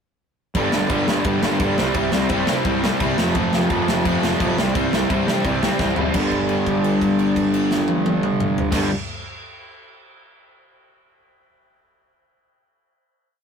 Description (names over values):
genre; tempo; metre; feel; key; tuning
punk rock; 172 BPM; 4/4; straight; G mixolydian; A4 = 441 Hz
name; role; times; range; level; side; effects
distorted electric guitar; riff; 0.5-8.9 s; F2 to C4; -22 LUFS; right 5 dB; distortion
fuzz picked electric bass; bass; 0.5-8.9 s; F1 to G2; -26 LUFS; equal; overdrive
big rock drum kit; drums; 0.5-8.8 s; crash cymbal, kick drum, snare drum, toms; -24 LUFS; equal; none
crunchy overdriven guitar; riff; 0.6-8.9 s; F2 to C4; -24 LUFS; left 2 dB; none
sludgy distorted guitar; riff; 0.6-8.9 s; G2 to F4; -26 LUFS; left 7 dB; overdrive
room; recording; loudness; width
light reverb; rough rehearsal-room recording, warm saturation; -17 LUFS; side -6 dB against mid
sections
0.6-6.1 riff; 6.1-8.9 final chord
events
drum fill 5.8-6.1; held note 6.1-8.7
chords
0.6 G; 1.8 C; 3.2 F; 4.6 C; 6.1 G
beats
| 0.56 0.91 1.26 1.61 | 1.96 2.31 2.66 3.01 | 3.36 3.71 4.06 4.41 | 4.76 5.11 5.45 5.80 | 6.15 6.50 6.84 7.19 | 7.54 7.89 8.23 8.58